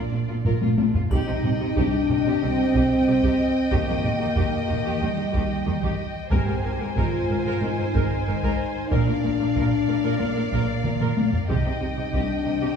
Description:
cinematic, epic orchestral film score; 92 BPM; 4/4; straight; C minor; A4 = 439 Hz
rich symphonic violin section; melody; 0.0-12.8 s; D5 to Ab5; -35 LUFS; left 1 dB
rich symphonic viola section; accompaniment; 0.0-12.8 s; F4 to Bb4; -34 LUFS; equal
mellow French horn section; sustained chords; 0.0-12.8 s; G3 to G4; -25 LUFS; left 2 dB
rich symphonic cello section; bass; 0.0-12.7 s; Ab2 to Eb3; -29 LUFS; right 2 dB
rich symphonic violin section; second line; 0.1-12.8 s; D4 to Eb5; -33 LUFS; left 2 dB
rich symphonic double bass section; bass; 0.1-12.5 s; Ab1 to Eb2; -29 LUFS; right 3 dB
taiko ensemble; drums; 0.4-12.7 s; -26 LUFS; equal
triangle; percussion; 1.1-2.4 s; -48 LUFS; left 4 dB
wet scoring stage reverb, RT60 1.6 s; heard from further back in the room, studio ambience; -20 LUFS; side -7 dB against mid
0.0-1.1 A section; 1.1-12.8 B section
drum fill 0.4-1.1, 10.8-11.5
0.0 Bb; 1.1 Cm; 3.7 Eb; 6.3 Abadd9; 8.9 Bb; 11.5 Cm

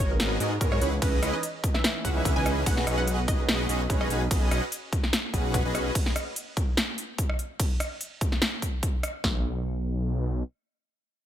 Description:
future bass; 146 BPM; 4/4; swing 54% on 16ths, half-time; B major; A4 = 439 Hz
wide unison pluck; melody; 0.0-4.2 s; B4 to G#5; -34 LUFS; right 1 dB; sidechain pumping, ping-pong delay
supersaw chords; riff; 0.0-5.9 s; B3 to G#5; -32 LUFS; equal; lush chorus, sidechain pumping, digital delay
wide detuned saw bass; bass; 0.0-5.9, 9.2-10.4 s; G#1 to G#2; -28 LUFS; equal; chorus, sidechain pumping
felt-muted upright piano; accompaniment; 0.1-4.2 s; E3 to B4; -36 LUFS; right 3 dB; sidechain pumping, digital delay
big-room dance drum kit; drums; 0.2-9.1 s; hi-hat, ride cymbal, rim click, snare drum; -30 LUFS; equal
big-room dance drum kit; drums; 0.6-9.3 s; kick drum, snare drum; -27 LUFS; equal
little or no reverb; -24 LUFS; side -11 dB against mid
0.0-9.2 A section; 9.2-11.3 B section
drop 0.0-9.2
0.0 G#m9; 0.8 C#m9; 2.7 B69; 6.0 N.C.

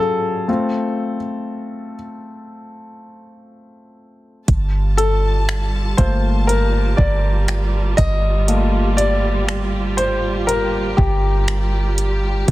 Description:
contemporary R&B; 60 BPM; 4/4; swing 54% on 16ths; G minor; A4 = 440 Hz
warm grand piano; accompaniment; 0.0-12.5 s; F#3 to Eb5; -21 LUFS; left 2 dB
rich studio string section; sustained chords; 4.5-12.5 s; Eb3 to A5; -25 LUFS; right 3 dB; sidechain pumping
soft 808-style bass; bass; 4.5-12.5 s; G1; -18 LUFS; equal
smooth R&B drum kit; drums; 4.5-12.5 s; finger snaps, hi-hat, kick drum; -18 LUFS; equal; overdrive, soft clipping on snare
studio ambience; dense, heavily limited modern master; -16 LUFS; side -17 dB against mid
0.0-12.5 A section
grand piano solo 0.0-12.5
0.5 Am; 4.5 Gm9

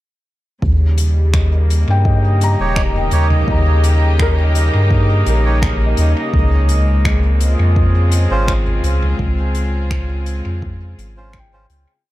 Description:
ambient dub; 84 BPM; 4/4; straight; Eb mixolydian; A4 = 440 Hz
clear studio string section; sustained chords; 0.6-12.1 s; Db3 to Ab4; -22 LUFS; left 1 dB
soft dub sub bass; bass; 0.6-11.9 s; Eb1 to G2; -14 LUFS; equal
electronic kick drum; drums; 0.6-11.5 s; -19 LUFS; equal
soft-mallet drum kit; drums; 0.6-11.8 s; finger snaps, hi-hat, toms; -26 LUFS; left 1 dB; dub echo
bubbling stepped-filter texture; texture; 1.2-12.1 s; Eb5; -27 LUFS; right 1 dB; chorus, built-in reverb
felt-muted upright piano; arpeggios; 1.9-6.4, 11.4-12.1 s; Bb4 to Bb5; -27 LUFS; left 3 dB; tape echo
melodica; stabs; 2.6-11.7 s; Db4 to Db5; -26 LUFS; right 3 dB; dub echo
small room ambience; echo-heavy mix; -13 LUFS; side -16 dB against mid
0.6-12.1 groove
fade-out 8.2-12.1
0.6 Eb7; 6.3 Dbmaj7

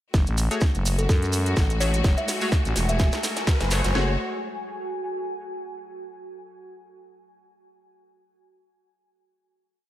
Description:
bass house; 126 BPM; 4/4; swing 56% on 16ths; F# minor; A4 = 442 Hz
clear studio string section; sustained chords; 0.1-4.2 s; G#3 to F#4; -32 LUFS; left 2 dB; sidechain pumping
growling FM bass; bass; 0.1-4.2 s; E1 to F#2; -24 LUFS; equal; tube saturation, sidechain pumping
garage drum kit; drums; 0.1-4.1 s; kick drum, snare drum; -21 LUFS; equal
house drum kit; drums; 0.1-3.9 s; hi-hat, snare drum; -32 LUFS; equal; overdrive, high-pass filter on snare, high-pass filter on hats, high-pass filter on room
maracas; percussion; 0.1-3.9 s; -33 LUFS; right 3 dB
riser; sound effects; 2.2-3.9 s; -35 LUFS; left 1 dB
deep dark ambient pad; texture; 1.7-5.8 s; F#4 to G#5; -34 LUFS; equal; chorus, built-in reverb, sidechain pumping
band-passed chord stab; stabs; 0.5-4.1 s; A3 to E5; -32 LUFS; left 2 dB; chorus, sidechain pumping, dub echo
kalimba; melody; 1.0-3.1 s; A4 to E5; -32 LUFS; left 1 dB; dub echo
light reverb, digital ambience; -21 LUFS; side -13 dB against mid
0.1-4.0 build; 4.0-5.9 final chord
build-up 0.1-4.0; drum fill 0.1-4.0; riser 2.2-4.0
0.1 F#madd9

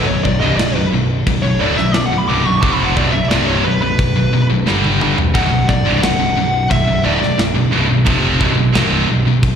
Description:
heavy metal; 88 BPM; 4/4; straight; B minor; A4 = 441 Hz
high-gain lead guitar; melody; 0.0-7.4 s; B4 to D6; -20 LUFS; left 1 dB; distortion, slapback echo, digital delay
distorted electric guitar; riff; 0.0-9.5 s; B1 to G3; -18 LUFS; right 8 dB; overdrive, slapback echo
scooped high-gain guitar; riff; 0.0-9.5 s; B1 to G3; -19 LUFS; left 8 dB; distortion, slapback echo
fuzz picked electric bass; bass; 0.0-9.6 s; B0 to G1; -19 LUFS; equal; overdrive
tight metal drum kit; drums; 0.3-9.6 s; crash cymbal, kick drum, snare drum, toms; -20 LUFS; equal
small room reverb; live gig heard through the venue's PA, recital hall reverb; -12 LUFS; side -8 dB against mid
0.0-9.6 A section
lead electric guitar solo 0.0-9.6; drum fill 4.7-5.3
0.0 Bm

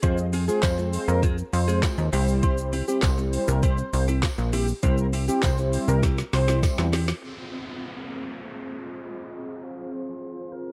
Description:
dance-pop; 100 BPM; 4/4; straight; F minor; A4 = 445 Hz
unison lead; melody; 0.0-6.6 s; G4 to C5; -33 LUFS; equal; sidechain pumping, digital delay
mellow synth brass; accompaniment; 0.0-10.7 s; G3 to Eb5; -33 LUFS; equal; chorus, sidechain pumping, low-pass filter
direct-recorded clean electric guitar; riff; 0.0-7.1 s; C4 to Ab4; -36 LUFS; equal; lush chorus
plucky analog bass; bass; 0.0-7.1 s; Bb1 to F2; -26 LUFS; equal; sidechain pumping
smooth R&B drum kit; drums; 0.0-7.2 s; handclaps, hi-hat, kick drum, shaker, snare drum; -28 LUFS; equal
tambourine; percussion; 0.6-6.8 s; -45 LUFS; equal
warm oboe; melody; 7.2-10.7 s; Ab4 to F5; -50 LUFS; equal; low-pass filter
downlifter; sound effects; 7.2-10.7 s; -41 LUFS; equal
digital ambience; dark, warm production; -24 LUFS; mono
0.0-7.2 A section; 7.2-10.7 B section
drop 0.0-7.2; drum fill 6.0-7.2
0.0 Fm; 2.1 C; 7.2 Fm

